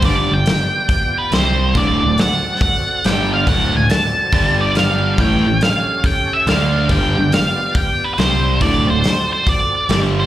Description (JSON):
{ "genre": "blues rock power trio and southern rock", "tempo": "140 BPM", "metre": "4/4", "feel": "swing 65% on 8ths", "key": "D mixolydian", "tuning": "A4 = 439 Hz", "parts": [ { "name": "overdriven tonewheel organ", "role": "sustained chords", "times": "0.0-10.3 s", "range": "B3 to D5", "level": "-28 LUFS", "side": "right 1 dB", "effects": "slow rotary speaker, chorus vibrato" }, { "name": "overdriven electric guitar", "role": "riff", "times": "0.0-10.3 s", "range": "D2 to D4", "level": "-19 LUFS", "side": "equal", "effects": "slapback echo" }, { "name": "fuzz picked electric bass", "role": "bass", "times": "0.0-10.3 s", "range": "D1 to D2", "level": "-20 LUFS", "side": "equal", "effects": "overdrive" }, { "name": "big rock drum kit", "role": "drums", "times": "0.0-10.0 s", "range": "hi-hat, kick drum, snare drum", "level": "-19 LUFS", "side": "equal", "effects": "none" }, { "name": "octave-fuzz lead guitar", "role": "melody", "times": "0.1-10.3 s", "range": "B4 to A5", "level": "-18 LUFS", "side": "right 1 dB", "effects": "distortion" } ], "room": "light reverb, small room ambience", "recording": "live gig heard through the venue's PA, club reverb", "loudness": "-13 LUFS", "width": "side -13 dB against mid", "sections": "0.0-10.3 A section", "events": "none", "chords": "0.0 G7; 1.3 C5; 1.7 D7; 3.0 G5; 3.5 D7; 4.3 G5; 5.2 A7; 6.5 D5; 6.9 G7; 8.2 C5; 8.6 D7" }